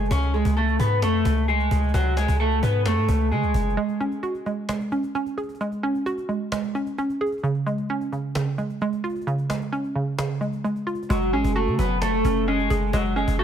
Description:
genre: hip hop, trap.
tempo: 131 BPM.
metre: 4/4.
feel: half-time.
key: F# harmonic minor.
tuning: A4 = 442 Hz.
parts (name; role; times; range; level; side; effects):
electric guitar at the edge of break-up; melody; 0.0-3.7, 11.1-13.4 s; F#3 to C#5; -24 LUFS; equal; phaser, digital delay.
warm 808-style bass; bass; 0.0-3.8, 11.1-13.4 s; F#1 to C#3; -23 LUFS; equal; none.
cajon; drums; 0.1-13.4 s; none; -33 LUFS; equal; none.
hollow square pluck; accompaniment; 3.8-13.4 s; C#3 to G#4; -25 LUFS; right 2 dB; chorus.
room: digital ambience.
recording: none.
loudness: -21 LUFS.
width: side -9 dB against mid.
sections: 0.0-13.4 A section.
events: break 3.8-11.1.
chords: 0.1 C#5; 3.8 F#sus2; 7.4 C#; 11.1 F#madd9.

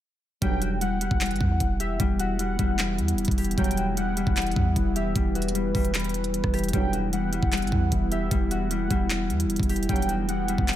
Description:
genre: hip hop, trap.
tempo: 152 BPM.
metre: 4/4.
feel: half-time.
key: E minor.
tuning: A4 = 440 Hz.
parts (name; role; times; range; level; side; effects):
warm velvety synth lead; second line; 0.4-10.8 s; B4 to G5; -32 LUFS; equal; chorus, ping-pong delay.
warm analog pad; sustained chords; 0.4-10.8 s; E3 to E4; -33 LUFS; right 2 dB; lush chorus.
Celtic harp; arpeggios; 0.4-10.8 s; G3 to G4; -29 LUFS; left 5 dB; ping-pong delay.
dark brass ensemble; stabs; 0.4-0.8, 3.6-4.0, 6.7-7.1, 9.9-10.3 s; B1 to F#3; -32 LUFS; right 7 dB; none.
clean 808-style bass; bass; 0.4-10.8 s; E1 to E2; -29 LUFS; equal; none.
trap drum kit; drums; 0.4-10.8 s; handclaps, hi-hat, kick drum, rim click; -27 LUFS; right 1 dB; none.
room: digital ambience.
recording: none.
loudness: -23 LUFS.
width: side -12 dB against mid.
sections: 0.4-10.8 A section.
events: none.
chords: 0.4 Emadd9.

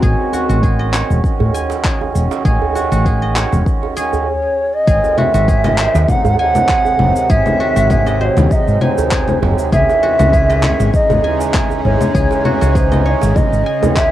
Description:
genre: organic downtempo.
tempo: 99 BPM.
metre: 4/4.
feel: swing 54% on 16ths.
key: unclear.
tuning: A4 = 436 Hz.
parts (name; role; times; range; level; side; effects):
hand-pumped harmonium; accompaniment; 0.0-14.1 s; D#3 to F#4; -22 LUFS; right 8 dB; vintage 12-bit sampler grit, sidechain pumping, cassette tape, analog delay.
bowed-like drone; sustained chords; 0.0-14.1 s; B#2 to G#4; -24 LUFS; left 2 dB; built-in reverb, sidechain pumping, cassette tape.
guzheng; arpeggios; 0.0-14.1 s; F#4 to G#5; -24 LUFS; left 1 dB; cassette tape, analog delay.
woody fretless electric bass; bass; 0.0-13.6 s; E1 to A2; -15 LUFS; equal; analog chorus, sidechain pumping.
electronic cabasa, handclaps and congas; drums; 0.0-14.1 s; none; -20 LUFS; left 2 dB; cassette tape.
electronic kick drum; drums; 0.0-14.1 s; none; -17 LUFS; equal; cassette tape.
djembe; percussion; 0.3-13.9 s; none; -24 LUFS; right 4 dB; none.
breathy bright low ney; melody; 4.3-14.1 s; B#4 to F#5; -16 LUFS; equal; cassette tape, tape echo.
room: moderate small room reverb, RT60 0.5 s.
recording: home recording on cassette.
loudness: -12 LUFS.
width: side -13 dB against mid.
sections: 0.0-4.9 A section; 4.9-14.1 B section.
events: none.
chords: 0.0 Amaj7; 4.9 G#7; 9.7 C#madd9.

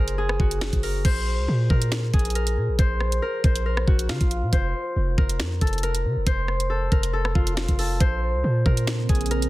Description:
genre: hip hop, drill.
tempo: 138 BPM.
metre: 4/4.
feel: half-time.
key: Bb minor.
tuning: A4 = 440 Hz.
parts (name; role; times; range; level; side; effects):
concert harp; melody; 0.0-9.5 s; F4 to C5; -28 LUFS; left 1 dB; none.
hard-hitting 808-style bass; bass; 0.0-9.5 s; F1 to Db3; -24 LUFS; equal; none.
drill drum kit; drums; 0.1-9.5 s; crash cymbal, finger snaps, hi-hat, kick drum, rim click, snare drum; -23 LUFS; equal; soft clipping on snare.
deep dark ambient pad; sustained chords; 8.6-9.5 s; Db3 to C4; -32 LUFS; right 7 dB; chorus, built-in reverb.
room: digital ambience.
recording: dense, heavily limited modern master.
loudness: -20 LUFS.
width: side -18 dB against mid.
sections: 0.0-1.0 A section; 1.0-9.5 B section.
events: none.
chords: 0.0 Gb; 1.0 Bbsus2; 4.5 F5; 8.0 Bbmadd9.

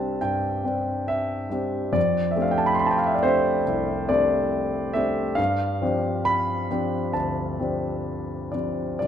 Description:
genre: classical, impressionist solo piano.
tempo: 69 BPM.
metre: 4/4.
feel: rubato.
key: unclear.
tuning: A4 = 441 Hz.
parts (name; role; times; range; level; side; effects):
warm concert grand piano; solo; 0.0-9.1 s; C2 to C6; -22 LUFS; equal; none.
room: moderate recital hall reverb, RT60 1.6 s.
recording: dark, warm production.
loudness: -22 LUFS.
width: side -9 dB against mid.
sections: 0.0-9.1 A section.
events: none.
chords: 0.0 Cadd9; 2.0 F69; 5.4 G9sus4.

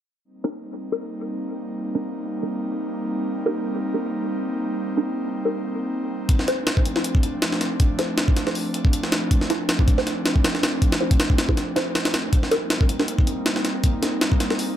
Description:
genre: drum and bass, jungle.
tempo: 159 BPM.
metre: 4/4.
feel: swing 55% on 16ths.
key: C dorian.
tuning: A4 = 440 Hz.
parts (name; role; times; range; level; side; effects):
airy breathy pad; sustained chords; 0.2-14.8 s; F3 to Eb4; -26 LUFS; equal; chorus.
filtered dub chord stab; stabs; 0.4-14.6 s; D4 to C5; -27 LUFS; right 1 dB; phaser, wide subtle chorus, dub echo.
jungle sampler-style drum kit; drums; 6.3-14.7 s; hi-hat, kick drum, snare drum; -20 LUFS; equal; none.
room: digital ambience.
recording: none.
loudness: -20 LUFS.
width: side -11 dB against mid.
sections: 0.3-12.3 A section; 12.3-14.8 B section.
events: break 11.6-12.3; build-up 12.3-14.8; filter sweep on synth stab 12.3-14.8.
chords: 0.3 Cm7; 6.3 Dm7; 12.3 Cm7.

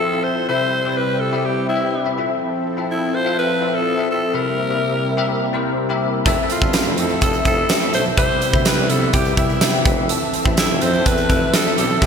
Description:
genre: 1980s-style pop.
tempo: 125 BPM.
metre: 4/4.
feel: straight.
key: unclear.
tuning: A4 = 440 Hz.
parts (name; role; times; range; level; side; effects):
raspy alto saxophone; melody; 0.0-12.1 s; E4 to C5; -22 LUFS; equal; ping-pong delay.
bell-like tine electric piano; accompaniment; 0.0-12.1 s; C3 to B5; -21 LUFS; left 4 dB; ensemble chorus.
warm analog pad; sustained chords; 0.0-12.1 s; C3 to E5; -26 LUFS; right 2 dB; chorus.
direct-recorded clean electric guitar; riff; 6.3-12.1 s; E3 to A4; -27 LUFS; right 6 dB; ensemble chorus.
warm tuba; bass; 6.3-12.1 s; F1 to C3; -25 LUFS; equal; none.
huge arena drum kit; drums; 6.3-12.1 s; hi-hat, kick drum, snare drum, tambourine; -18 LUFS; right 1 dB; gated reverb.
tambourine; percussion; 6.5-12.0 s; none; -35 LUFS; right 8 dB; none.
room: moderate lush hall reverb, RT60 1.9 s.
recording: bright 1980s-style digital production.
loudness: -16 LUFS.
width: side -6 dB against mid.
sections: 0.0-12.1 A section.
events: none.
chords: 0.5 Cmaj7; 2.2 Fmaj7; 4.3 C7; 6.3 Fmaj7; 8.2 Cmaj7; 9.9 Fmaj7.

